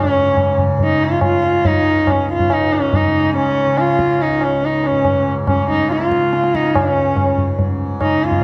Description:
indian classical, Hindustani; 142 BPM; 4/4; straight; Db raga hamsadhwani; A4 = 440 Hz
warm sarangi; melody; 0.0-8.4 s; Db4 to F4; -18 LUFS; equal
tanpura; drone; 0.0-8.4 s; Db2 to Db3; -25 LUFS; equal
tabla; percussion; 0.4-8.4 s; -22 LUFS; equal
wet recital hall reverb, RT60 1.6 s; dark, warm production; -16 LUFS; mono
0.0-8.4 A section

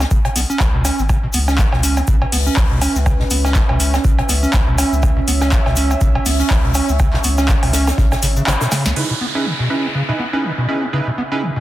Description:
acid house; 122 BPM; 4/4; swing 57% on 16ths; C# minor; A4 = 440 Hz
overdriven acid bass; riff; 0.0-11.6 s; B2 to C#4; -21 LUFS; equal; lush chorus, cassette tape, tape echo
saturated sub bass; bass; 0.0-8.9 s; G#1 to C#2; -19 LUFS; equal; tube saturation, sidechain pumping
booming analog drum machine; drums; 0.0-9.1 s; cowbell, crash cymbal, handclaps, hi-hat, snare drum; -21 LUFS; equal; overdrive
tight funk drum kit; drums; 0.0-8.9 s; hi-hat, shaker, snare drum; -29 LUFS; left 2 dB; high-pass filter on hats, soft clipping on snare, high-pass filter on snare, high-pass filter on perc, high-pass filter on room
tube shaker; percussion; 0.0-8.9 s; -29 LUFS; left 3 dB
electronic kick drum; drums; 0.1-8.1 s; -17 LUFS; equal; overdrive
warm analog pad; sustained chords; 1.1-11.6 s; C#3 to E5; -26 LUFS; right 3 dB; chorus, sidechain pumping
band-passed chord stab; stabs; 9.0-11.4 s; D#4 to B4; -23 LUFS; right 4 dB; chorus, tape echo
downlifter; sound effects; 9.0-11.6 s; -25 LUFS; right 1 dB
light reverb, digital ambience; dense, heavily limited modern master; -14 LUFS; side -15 dB against mid
0.0-9.0 A section; 9.0-11.6 B section
kick drops out 8.5-9.0; band accent 8.5; drum fill 8.7
0.0 C#m7

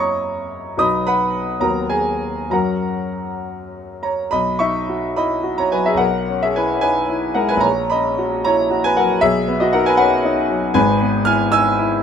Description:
classical, romantic character piece for solo piano; 63-79 BPM (dotted quarters); 6/8; rubato; B major; A4 = 441 Hz
clear concert grand piano; solo; 0.0-12.0 s; G#1 to E#6; -16 LUFS; equal
light reverb; -16 LUFS; side -8 dB against mid
0.0-4.3 A section; 4.3-12.0 B section
0.0 F#7; 0.8 B; 1.6 B/D#; 2.5 F#; 4.3 B; 6.0 C#m7/B; 9.2 B; 10.7 E/G#

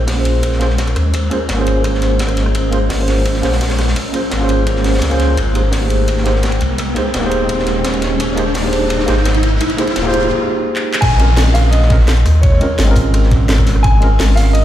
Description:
liquid drum and bass; 170 BPM; 4/4; straight; Bb dorian; A4 = 441 Hz
ethereal airy pad; sustained chords; 0.0-14.6 s; Ab3 to C6; -24 LUFS; left 1 dB; ensemble chorus, built-in reverb, sidechain pumping
sub bass with octave; bass; 0.0-14.6 s; Eb1 to Eb2; -14 LUFS; equal
riser and downlifter; sound effects; 3.0-13.8 s; -23 LUFS; equal
bright tine electric piano; accompaniment; 0.1-14.6 s; Ab3 to C5; -19 LUFS; right 1 dB; medium stereo tremolo, ping-pong delay
crunchy breakbeat drum kit; drums; 0.1-14.6 s; hi-hat, ride cymbal, snare drum; -24 LUFS; equal; high-pass filter on cymbals, high-pass filter on hats, high-pass filter on snare, high-pass filter on room
electronic kick drum; drums; 0.1-13.9 s; -18 LUFS; equal
garage drum kit; drums; 0.1-14.6 s; crash cymbal, handclaps, hi-hat, rim click, snare drum; -23 LUFS; equal
warm grand piano; melody; 11.0-14.6 s; Db5 to Ab5; -20 LUFS; equal; vintage 12-bit sampler grit, dub echo
light reverb, small room ambience; played on a big sound system in a bare room, stone room reverb; -12 LUFS; side -12 dB against mid
0.0-11.0 A section; 11.0-14.6 B section
build-up 0.0-11.0; riser 3.0-10.3; drum fill 5.4-10.3, 10.8; drop 11.0-14.6
0.0 Bbm9; 5.4 Abmaj9; 11.0 Bbm9

